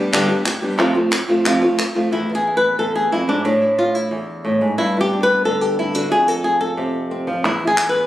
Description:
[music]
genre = flamenco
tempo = 180 BPM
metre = 4/4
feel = straight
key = unclear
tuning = A4 = 440 Hz
[part]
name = flamenco guitar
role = melody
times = 0.0-8.1 s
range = E2 to B4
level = -16 LUFS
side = equal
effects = none
[part]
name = palmas hand claps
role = percussion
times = 0.1-2.0, 7.4-7.9 s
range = none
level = -22 LUFS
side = equal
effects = none
[sound]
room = moderate stone room reverb, RT60 1.4 s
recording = recorded on a phone in the room, club reverb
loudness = -16 LUFS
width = side -14 dB against mid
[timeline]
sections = 0.0-2.1 A section; 2.1-8.1 B section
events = none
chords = 0.0 G; 0.8 F; 2.1 E; 3.5 A5; 4.8 G; 6.1 F; 7.4 E

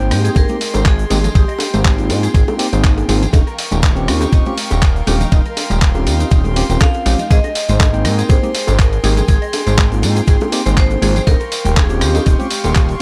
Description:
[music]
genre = nu-disco, nu disco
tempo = 121 BPM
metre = 4/4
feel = swing 55% on 16ths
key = Ab major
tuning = A4 = 440 Hz
[part]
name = vibraphone with hard mallets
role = melody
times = 0.0-2.1, 6.8-13.0 s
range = G4 to F5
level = -26 LUFS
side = equal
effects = tape echo
[part]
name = tine electric piano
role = accompaniment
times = 0.0-13.0 s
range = Bb3 to G5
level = -24 LUFS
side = equal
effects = none
[part]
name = warm studio string section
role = sustained chords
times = 0.0-13.0 s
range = Ab3 to Db6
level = -30 LUFS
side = equal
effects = sidechain pumping
[part]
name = fat analog bass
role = bass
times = 0.0-13.0 s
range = Eb1 to Ab2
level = -18 LUFS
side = equal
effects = sidechain pumping
[part]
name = dusty soul sampler-style drum kit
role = drums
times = 0.0-13.0 s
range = handclaps, hi-hat, ride cymbal, rim click, tambourine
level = -24 LUFS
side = equal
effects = none
[part]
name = egg shaker, bongos and congas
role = percussion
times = 0.0-13.0 s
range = none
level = -27 LUFS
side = equal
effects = none
[part]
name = mellow electric guitar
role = riff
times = 0.2-12.7 s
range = Eb4 to Eb5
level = -30 LUFS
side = equal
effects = ensemble chorus
[part]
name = electronic kick drum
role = drums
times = 0.4-12.9 s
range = none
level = -15 LUFS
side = equal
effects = none
[sound]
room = digital ambience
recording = none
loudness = -14 LUFS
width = mono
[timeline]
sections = 0.0-13.0 A section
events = none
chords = 0.0 Abmaj7; 3.3 Eb13; 7.3 Abmaj7; 11.3 Eb13

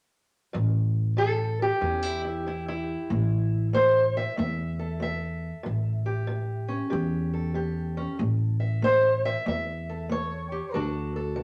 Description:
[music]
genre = acoustic country blues, solo or duo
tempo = 94 BPM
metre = 4/4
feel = swing 65% on 8ths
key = A mixolydian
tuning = A4 = 440 Hz
[part]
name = fingerpicked steel-string acoustic guitar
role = melody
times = 0.5-11.4 s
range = A2 to E5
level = -29 LUFS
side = equal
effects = none
[part]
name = upright bass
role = bass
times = 0.5-11.4 s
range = A1 to E2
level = -30 LUFS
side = equal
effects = none
[sound]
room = wet studio reverb, RT60 0.8 s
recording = none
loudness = -27 LUFS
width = mono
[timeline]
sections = 0.5-11.4 A section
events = none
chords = 0.5 A7; 10.7 D

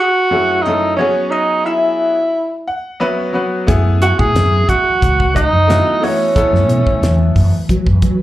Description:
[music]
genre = electric jazz fusion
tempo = 90 BPM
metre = 4/4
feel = straight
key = F# dorian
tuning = A4 = 440 Hz
[part]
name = warm tenor saxophone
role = melody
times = 0.0-7.4 s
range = C#4 to G#4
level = -14 LUFS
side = right 1 dB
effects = slapback echo
[part]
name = vintage hollow-body jazz guitar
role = second line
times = 0.0-7.4 s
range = C#5 to G#5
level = -25 LUFS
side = left 1 dB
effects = slapback echo
[part]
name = bright concert grand piano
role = accompaniment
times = 0.3-7.5 s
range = F#2 to F#5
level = -20 LUFS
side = left 2 dB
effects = none
[part]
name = ethereal airy pad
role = sustained chords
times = 4.7-8.2 s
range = E3 to G#5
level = -26 LUFS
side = right 1 dB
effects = ensemble chorus, built-in reverb, phaser
[part]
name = mellow fretless electric bass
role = bass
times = 3.7-8.2 s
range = C#2 to F#3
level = -13 LUFS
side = equal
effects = ensemble chorus
[part]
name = damped 70s drum kit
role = drums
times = 3.7-8.2 s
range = hi-hat, kick drum, snare drum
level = -18 LUFS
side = equal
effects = none
[sound]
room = light reverb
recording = live gig heard through the venue's PA, club reverb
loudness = -12 LUFS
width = side -14 dB against mid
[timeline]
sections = 0.0-8.2 A section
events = grand piano fill 2.3-3.7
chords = 0.0 F#m13; 1.0 E69/F#; 3.7 F#m11

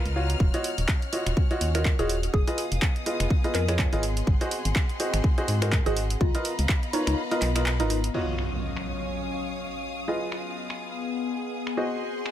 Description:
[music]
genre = piano house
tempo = 124 BPM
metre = 4/4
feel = swing 57% on 16ths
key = Eb minor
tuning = A4 = 440 Hz
[part]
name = bright symphonic string section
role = sustained chords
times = 0.0-12.3 s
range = Ab4 to F6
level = -36 LUFS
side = left 2 dB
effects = sidechain pumping
[part]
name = clear baby grand piano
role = riff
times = 0.0-12.3 s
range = F4 to F5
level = -31 LUFS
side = right 1 dB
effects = sidechain pumping, ping-pong delay
[part]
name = warbly tape-like pad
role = texture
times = 0.1-12.3 s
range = Gb3 to Bb5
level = -35 LUFS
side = left 3 dB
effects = chorus, built-in reverb, sidechain pumping
[part]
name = organ-like FM bass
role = bass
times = 0.1-8.1 s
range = Eb1 to Ab2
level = -26 LUFS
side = equal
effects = sidechain pumping
[part]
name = punchy analog drum machine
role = drums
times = 0.1-12.3 s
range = crash cymbal, finger snaps, handclaps, hi-hat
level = -32 LUFS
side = right 1 dB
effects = low-pass filter on hats, low-pass filter on snare, low-pass filter on cymbals, low-pass filter on room
[part]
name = electronic kick drum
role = drums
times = 0.4-6.8 s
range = none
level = -24 LUFS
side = equal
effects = none
[part]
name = mallet-like synth pluck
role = melody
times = 1.7-8.0 s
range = Eb4 to Db5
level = -32 LUFS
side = left 1 dB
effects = chorus, phaser, ping-pong delay
[part]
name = impact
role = sound effects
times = 8.1-10.1 s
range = none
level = -34 LUFS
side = equal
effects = none
[sound]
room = light reverb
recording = none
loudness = -24 LUFS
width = side -11 dB against mid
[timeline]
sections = 0.0-8.1 A section; 8.1-12.3 B section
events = fade-in on ambient pad 0.0-8.1; kick drops out 7.2-8.1; impact 8.1-10.1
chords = 0.4 Ebm9; 2.3 Fm7b5; 4.0 Ab7; 6.2 Db13; 8.1 Ebm9; 10.1 Fm7b5; 11.8 Ab7

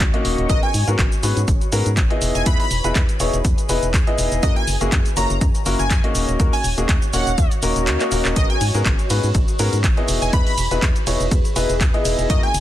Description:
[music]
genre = piano house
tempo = 122 BPM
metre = 4/4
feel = swing 55% on 16ths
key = unclear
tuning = A4 = 440 Hz
[part]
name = organ-like FM bass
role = bass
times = 0.0-12.6 s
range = D#1 to G#2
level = -22 LUFS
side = equal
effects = sidechain pumping
[part]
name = electronic kick drum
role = drums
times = 0.0-12.4 s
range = none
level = -19 LUFS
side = equal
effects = none
[part]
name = punchy analog drum machine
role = drums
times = 0.0-12.6 s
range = handclaps, hi-hat, ride cymbal, shaker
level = -25 LUFS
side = right 1 dB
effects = none
[part]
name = granular cloud pad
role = texture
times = 0.0-12.6 s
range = F#4 to C#6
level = -29 LUFS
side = right 1 dB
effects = built-in reverb, sidechain pumping
[part]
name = clear grand piano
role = riff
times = 0.1-12.5 s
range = A#3 to D#5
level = -24 LUFS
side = left 2 dB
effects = sidechain pumping, ping-pong delay
[part]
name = plucky unison lead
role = melody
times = 0.5-12.6 s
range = D#5 to B5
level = -25 LUFS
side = equal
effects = analog chorus, ping-pong delay
[sound]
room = little or no reverb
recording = dense, heavily limited modern master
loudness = -16 LUFS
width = side -13 dB against mid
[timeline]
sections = 0.0-12.6 A section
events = kick drops out 7.9-8.4; drum fill 8.0-8.4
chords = 0.5 G#m11; 2.2 Emaj7; 4.4 F#7; 6.2 D#m7; 8.4 G#m11; 10.1 Emaj7

